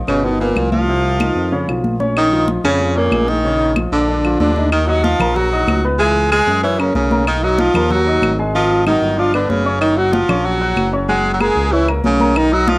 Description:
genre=Afro-Cuban jazz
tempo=188 BPM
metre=4/4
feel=straight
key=Bb minor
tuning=A4 = 445 Hz
part: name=warm baby grand piano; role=accompaniment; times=0.0-12.8 s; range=Cb3 to Gb6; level=-21 LUFS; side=left 1 dB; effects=cassette tape
part: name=smooth gliding synth bass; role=bass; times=0.0-12.8 s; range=Gb1 to Gb2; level=-20 LUFS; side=equal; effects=none
part: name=clear tenor saxophone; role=melody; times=0.1-12.8 s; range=A#3 to Ab4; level=-18 LUFS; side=equal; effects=none
part: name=bright baritone saxophone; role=second line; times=0.1-12.8 s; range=Bb2 to Ab3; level=-19 LUFS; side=right 1 dB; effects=cassette tape
part: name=claves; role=percussion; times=0.1-12.5 s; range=none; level=-24 LUFS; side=left 3 dB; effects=none
part: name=congas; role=percussion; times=0.1-12.8 s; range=none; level=-22 LUFS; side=left 1 dB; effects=none
room=moderate spring reverb, RT60 1.2 s, studio reverb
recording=home recording on cassette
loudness=-13 LUFS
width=side -23 dB against mid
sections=0.0-4.7 A section; 4.7-12.8 B section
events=none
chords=0.2 G7alt; 0.9 Cmadd11; 1.5 Bbm; 2.2 Bbm7; 4.1 Bb; 4.7 Ebm9; 6.0 Dbm; 6.6 Gb; 7.3 Bmaj7; 8.5 Ab5; 9.2 G; 9.8 Gbmaj7; 11.1 Gbadd9

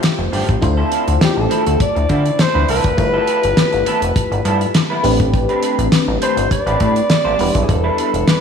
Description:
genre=early-eighties boogie funk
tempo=102 BPM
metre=4/4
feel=straight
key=D dorian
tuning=A4 = 440 Hz
part: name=FM electric piano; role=accompaniment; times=0.0-8.4 s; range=G3 to C5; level=-21 LUFS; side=left 2 dB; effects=chorus, phaser, slapback echo
part: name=electric guitar through a small old amp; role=riff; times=0.0-8.2 s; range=F3 to C5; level=-22 LUFS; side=right 2 dB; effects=analog chorus, slapback echo
part: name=damped 70s drum kit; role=drums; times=0.0-8.4 s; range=hi-hat, kick drum, snare drum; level=-18 LUFS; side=equal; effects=none
part: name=chorused synth bass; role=bass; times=0.2-8.2 s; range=E1 to D3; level=-18 LUFS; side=left 1 dB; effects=none
part: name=growling alto saxophone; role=melody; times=1.2-8.4 s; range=G4 to D5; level=-19 LUFS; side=equal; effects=slapback echo, tape echo
room=moderate lush hall reverb, RT60 2.4 s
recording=big arena sound, studio ambience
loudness=-13 LUFS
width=side -7 dB against mid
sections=0.6-8.4 A section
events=none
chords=0.0 G9sus4; 0.6 Dm9; 3.0 G13; 5.0 Am11; 7.4 Em7

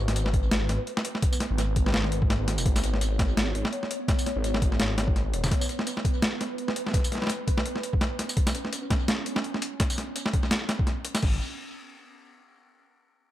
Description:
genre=half-time drum and bass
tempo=168 BPM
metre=4/4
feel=swing 56% on 16ths, half-time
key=G# minor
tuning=A4 = 443 Hz
part: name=phased detuned saw bass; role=bass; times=0.0-5.5, 11.2-11.4 s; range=D#1 to G#1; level=-27 LUFS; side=equal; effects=phaser
part: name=pulsing gated texture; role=texture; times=0.0-11.2 s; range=B3 to C#5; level=-34 LUFS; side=right 2 dB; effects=chorus, built-in reverb
part: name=boom bap sampler-style drum kit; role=drums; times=0.1-11.3 s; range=crash cymbal, hi-hat, snare drum, tambourine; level=-29 LUFS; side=equal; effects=overdrive
part: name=electronic kick drum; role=drums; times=0.3-11.3 s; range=none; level=-26 LUFS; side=equal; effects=overdrive
room=little or no reverb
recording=echo-heavy mix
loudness=-24 LUFS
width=side -13 dB against mid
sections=0.0-11.2 A section; 11.2-12.7 B section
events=none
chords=0.0 G#m; 11.2 N.C.

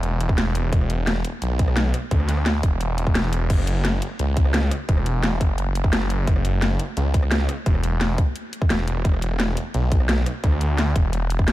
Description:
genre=dark technical drum and bass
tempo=173 BPM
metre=4/4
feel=straight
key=unclear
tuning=A4 = 440 Hz
part: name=snarling distorted saw bass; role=bass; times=0.0-11.5 s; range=E1 to D2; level=-22 LUFS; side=equal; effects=distortion, overdrive, sidechain pumping
part: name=drum and bass drum kit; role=drums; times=0.0-11.5 s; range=crash cymbal, hi-hat, rim click, snare drum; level=-26 LUFS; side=equal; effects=overdrive, studio reverb
part: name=electronic kick drum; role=drums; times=0.3-11.5 s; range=none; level=-20 LUFS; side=equal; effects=studio reverb
room=little or no reverb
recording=none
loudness=-19 LUFS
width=side -16 dB against mid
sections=0.0-11.5 A section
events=none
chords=none

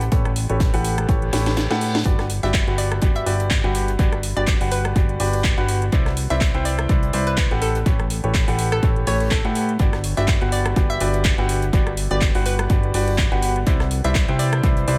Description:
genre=piano house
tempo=124 BPM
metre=4/4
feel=swing 56% on 16ths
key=G major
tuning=A4 = 442 Hz
part: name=clear upright piano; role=riff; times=0.0-15.0 s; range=E4 to G5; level=-27 LUFS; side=equal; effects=vintage 12-bit sampler grit, sidechain pumping, dub echo
part: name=fat analog bass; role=bass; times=0.0-15.0 s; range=G1 to A2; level=-25 LUFS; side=equal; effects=sidechain pumping
part: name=gated 80s drum kit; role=drums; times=0.0-15.0 s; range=hi-hat, snare drum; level=-41 LUFS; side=equal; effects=none
part: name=house drum kit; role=drums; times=0.0-15.0 s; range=handclaps, hi-hat, rim click, snare drum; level=-30 LUFS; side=equal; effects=studio reverb, dub echo
part: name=electronic kick drum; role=drums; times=0.1-14.7 s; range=none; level=-22 LUFS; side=equal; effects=studio reverb
part: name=reverse cymbal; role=sound effects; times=1.3-2.1 s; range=none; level=-36 LUFS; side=equal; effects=none
part: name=hollow square pluck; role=melody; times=2.4-14.6 s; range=A4 to E5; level=-32 LUFS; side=equal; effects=chorus, dub echo
room=light reverb, small room ambience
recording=echo-heavy mix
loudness=-20 LUFS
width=mono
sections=0.0-15.0 A section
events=reverse cymbal 1.3-2.1; drum fill 1.3-2.1; kick drops out 1.6-2.1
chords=0.0 A9; 2.1 Gmaj7; 5.9 Cmaj9; 7.6 A9; 9.8 Gmaj7; 13.7 Cmaj9

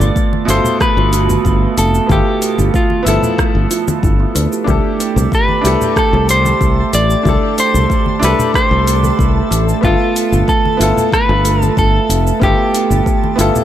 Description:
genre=sunset chillout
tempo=93 BPM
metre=4/4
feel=straight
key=C major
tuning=A4 = 440 Hz
part: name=clean electric guitar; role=melody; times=0.0-13.6 s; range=E4 to D5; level=-17 LUFS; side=left 1 dB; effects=digital delay
part: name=bright baby grand piano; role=accompaniment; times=0.0-13.6 s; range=B2 to E5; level=-19 LUFS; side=moving between left 5 dB and right 5 dB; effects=auto-pan, vintage 12-bit sampler grit, digital delay
part: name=fingered electric bass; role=bass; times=0.0-13.5 s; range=F1 to D2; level=-15 LUFS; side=equal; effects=none
part: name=deep house drum kit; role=drums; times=0.0-13.6 s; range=cabasa, hi-hat, rim click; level=-22 LUFS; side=equal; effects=none
part: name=congas and bongos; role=percussion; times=0.0-13.6 s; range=none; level=-23 LUFS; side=left 2 dB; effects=none
part: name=kalimba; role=arpeggios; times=0.2-13.5 s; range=A3 to G4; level=-20 LUFS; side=right 8 dB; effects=digital delay
part: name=electronic kick drum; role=drums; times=0.2-13.2 s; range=none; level=-17 LUFS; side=equal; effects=none
part: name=twinkling granular texture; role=texture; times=5.2-13.6 s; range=A4 to A5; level=-28 LUFS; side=left 2 dB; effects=built-in reverb
room=light reverb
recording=none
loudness=-11 LUFS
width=side -11 dB against mid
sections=0.0-13.6 A section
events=none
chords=0.0 G13; 4.7 C69; 9.8 G13

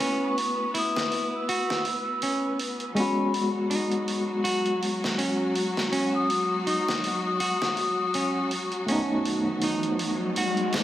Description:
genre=trip hop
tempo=81 BPM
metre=4/4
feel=swing 55% on 16ths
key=unclear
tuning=A4 = 437 Hz
part: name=overdriven tine electric piano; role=accompaniment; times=0.0-10.8 s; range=G#3 to F#4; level=-30 LUFS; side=equal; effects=medium tremolo, tape echo
part: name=rich symphonic string section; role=sustained chords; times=0.0-10.8 s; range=F#3 to B4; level=-31 LUFS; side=left 1 dB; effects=none
part: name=semi-hollow electric guitar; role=arpeggios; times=0.0-10.7 s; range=C#4 to F#4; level=-30 LUFS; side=right 1 dB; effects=vintage 12-bit sampler grit, low-pass filter, tape echo
part: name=trip hop sampler-style drum kit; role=drums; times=0.0-10.8 s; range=hi-hat, snare drum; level=-32 LUFS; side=right 2 dB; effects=high-pass filter on hats, studio reverb, high-pass filter on snare
part: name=mellow hollow baroque flute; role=melody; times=0.2-9.4 s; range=A5 to E6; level=-30 LUFS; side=left 2 dB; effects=vintage 12-bit sampler grit, tape echo
part: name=riser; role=sound effects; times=9.4-10.8 s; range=none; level=-32 LUFS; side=left 1 dB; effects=none
room=moderate plate reverb, RT60 1.7 s, digital ambience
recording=vinyl crackle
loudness=-24 LUFS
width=side -12 dB against mid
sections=0.0-10.8 A section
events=filter sweep on string section 0.0-10.8; riser 9.4-10.8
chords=0.0 F#m7; 3.0 G#m7; 8.9 B7

